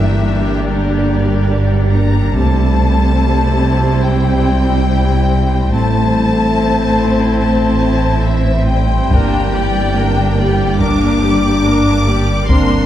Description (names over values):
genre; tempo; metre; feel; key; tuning
cinematic, hybrid orchestral and electronic film score; 71 BPM; 4/4; straight; G dorian; A4 = 440 Hz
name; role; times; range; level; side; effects
warm symphonic violin section; melody; 0.0-12.9 s; D5 to D6; -21 LUFS; left 3 dB; none
rich symphonic violin section; second line; 0.0-12.9 s; E4 to D5; -25 LUFS; left 3 dB; none
rich symphonic viola section; accompaniment; 0.0-12.9 s; G3 to D4; -21 LUFS; right 2 dB; none
mellow French horn section; sustained chords; 0.0-12.9 s; D3 to D4; -19 LUFS; left 3 dB; none
metallic inharmonic drone; sustained chords; 0.0-12.9 s; D3 to D5; -22 LUFS; equal; chorus, built-in reverb, phaser
punchy sub bass; bass; 0.0-12.9 s; G1 to C2; -19 LUFS; equal; none
warm symphonic cello section; bass; 0.0-12.9 s; G2 to C3; -19 LUFS; right 2 dB; none
warm symphonic double bass section; bass; 0.0-12.9 s; G1 to C2; -20 LUFS; right 3 dB; none
taiko ensemble; drums; 2.4-4.0, 9.1-12.9 s; none; -17 LUFS; equal; none
room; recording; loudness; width
moderate scoring stage reverb, RT60 1.7 s; dark, warm production; -11 LUFS; side -12 dB against mid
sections
0.0-12.9 A section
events
none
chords
0.0 Gm; 2.4 C; 5.7 Am; 9.1 Gm